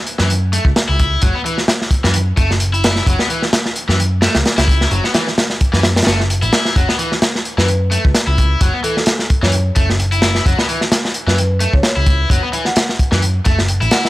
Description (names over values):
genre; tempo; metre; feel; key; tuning
breakbeat, breaks; 130 BPM; 4/4; swing 55% on 16ths; F# minor; A4 = 440 Hz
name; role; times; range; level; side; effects
crunchy breakbeat drum kit; drums; 0.1-14.1 s; hi-hat, kick drum, snare drum; -15 LUFS; equal; none
cranked stack guitar; riff; 0.2-14.1 s; E3 to E4; -20 LUFS; left 1 dB; overdrive, tube saturation, tape echo
hollow-body short-scale picked electric bass; bass; 0.2-13.9 s; F#1 to F#2; -16 LUFS; equal; none
marimba with soft mallets; melody; 7.6-14.1 s; A4 to F#5; -25 LUFS; equal; old record sound, tape echo
room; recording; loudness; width
small room ambience; dry, gritty hardware recording; -13 LUFS; side -17 dB against mid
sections
0.0-14.1 A section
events
none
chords
0.0 F#7(no3)